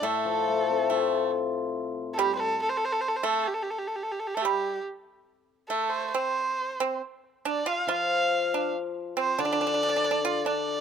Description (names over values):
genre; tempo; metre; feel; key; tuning
chinese traditional, Chinese chamber ensemble; 69 BPM; 2/4; rubato; D yu mode; A4 = 440 Hz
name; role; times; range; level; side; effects
warm erhu; melody; 0.0-10.8 s; G4 to F5; -28 LUFS; equal; none
pipa; second line; 0.0-10.8 s; G3 to F4; -30 LUFS; right 7 dB; none
hammered dulcimer; accompaniment; 0.0-2.6, 7.9-10.8 s; A2 to F4; -29 LUFS; left 7 dB; none
room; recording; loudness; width
light reverb; none; -25 LUFS; side -7 dB against mid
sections
0.0-10.8 A section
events
none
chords
none